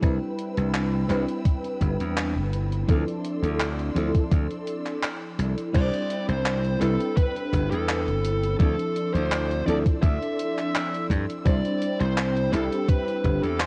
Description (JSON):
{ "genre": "vaporwave", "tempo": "84 BPM", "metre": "4/4", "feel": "straight", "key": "C major", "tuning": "A4 = 440 Hz", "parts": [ { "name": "FM electric piano with soft pad layer", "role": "accompaniment", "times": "0.0-13.7 s", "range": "F3 to C5", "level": "-31 LUFS", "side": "equal", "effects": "ensemble chorus, cassette tape, analog delay" }, { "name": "warm symphonic string section", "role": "sustained chords", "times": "0.0-13.7 s", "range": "C4 to E6", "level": "-42 LUFS", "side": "equal", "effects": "none" }, { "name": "slap bass", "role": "bass", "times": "0.0-13.7 s", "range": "G1 to G2", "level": "-28 LUFS", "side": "equal", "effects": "tube saturation" }, { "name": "electronic kick drum", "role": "drums", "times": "0.0-13.4 s", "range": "none", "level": "-24 LUFS", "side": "equal", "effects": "vintage 12-bit sampler grit, small room reverb" }, { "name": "gated 80s digital drum machine", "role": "drums", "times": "0.0-13.7 s", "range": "crash cymbal, handclaps, hi-hat", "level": "-35 LUFS", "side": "equal", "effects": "gated reverb, vintage 12-bit sampler grit, small room reverb" }, { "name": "dark smooth lead guitar", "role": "melody", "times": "5.7-13.7 s", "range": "A4 to E5", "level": "-32 LUFS", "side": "equal", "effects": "overdrive, analog delay" } ], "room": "light reverb", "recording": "worn, warbling old tape, cassette tape, warbly pitch drift", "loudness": "-25 LUFS", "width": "mono", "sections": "0.0-5.7 A section; 5.7-13.7 B section", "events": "kick drops out 5.0-5.7", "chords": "0.0 Cmaj7; 2.9 Dm9; 5.7 Cmaj7; 8.6 Dm9; 11.5 Cmaj7", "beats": "| 0.03 0.74 1.46 2.17 | 2.89 3.60 4.32 5.03 | 5.75 6.46 7.17 7.89 | 8.60 9.32 10.03 10.74 | 11.46 12.17 12.89 13.60" }